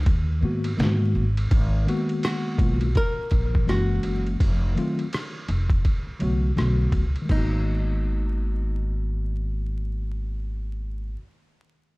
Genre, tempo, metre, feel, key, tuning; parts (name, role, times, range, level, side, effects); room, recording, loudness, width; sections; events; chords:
hip hop, jazz-hop; 83 BPM; 4/4; swing 62% on 16ths; G# dorian; A4 = 440 Hz
archtop guitar, miked and amplified; melody; 0.0-11.2 s; D#4 to A#4; -32 LUFS; left 1 dB; analog delay
upright bass; bass; 0.0-11.1 s; F1 to G#2; -24 LUFS; equal
trip hop sampler-style drum kit; drums; 0.1-7.5 s; crash cymbal, hi-hat, kick drum, ride cymbal, rim click, snare drum; -24 LUFS; equal; overdrive
tine electric piano; accompaniment; 0.4-11.2 s; D3 to F#4; -28 LUFS; left 1 dB; medium stereo tremolo
digital ambience; dark, warm production, vinyl crackle; -22 LUFS; side -24 dB against mid
0.0-1.5 A section; 1.5-7.3 B section; 7.3-10.2 C section
0.0 D#madd11; 0.8 G#m9; 3.7 F#9; 4.4 F7b9; 6.6 Bm7; 7.3 G#m9